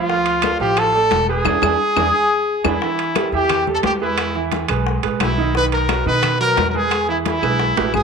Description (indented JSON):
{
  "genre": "latin, salsa",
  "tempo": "176 BPM",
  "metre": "4/4",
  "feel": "straight",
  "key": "unclear",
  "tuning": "A4 = 440 Hz",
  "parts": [
    { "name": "brilliant horn section", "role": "melody", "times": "0.0-8.0 s", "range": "E4 to B4", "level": "-18 LUFS", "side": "left 1 dB", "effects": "none" },
    { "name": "clear grand piano", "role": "accompaniment", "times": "0.0-8.0 s", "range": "D#3 to F5", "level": "-22 LUFS", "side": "right 9 dB", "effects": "none" },
    { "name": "upright bass", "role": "bass", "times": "0.0-8.0 s", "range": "E1 to B2", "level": "-24 LUFS", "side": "left 1 dB", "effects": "none" },
    { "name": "bongos", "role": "percussion", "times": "0.1-8.0 s", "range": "none", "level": "-28 LUFS", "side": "left 13 dB", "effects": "none" },
    { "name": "congas", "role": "percussion", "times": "0.1-8.0 s", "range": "none", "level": "-29 LUFS", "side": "left 13 dB", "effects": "none" },
    { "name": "timbales", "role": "percussion", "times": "0.3-7.9 s", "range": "none", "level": "-26 LUFS", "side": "right 11 dB", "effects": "none" },
    { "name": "claves", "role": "percussion", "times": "0.4-8.0 s", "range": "none", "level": "-26 LUFS", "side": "left 15 dB", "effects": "none" }
  ],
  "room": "wet spring reverb, RT60 1.4 s, small room ambience",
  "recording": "1960s-style stereo with parts hard left and right",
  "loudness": "-15 LUFS",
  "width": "side -6 dB against mid",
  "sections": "0.0-2.8 A section; 2.8-8.0 A section",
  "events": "band accent 1.5-2.8; drum fill 2.3-2.8, 7.4-8.0",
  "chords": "0.1 Dm; 1.5 E7; 2.8 A5; 4.2 E; 5.5 B; 6.9 E"
}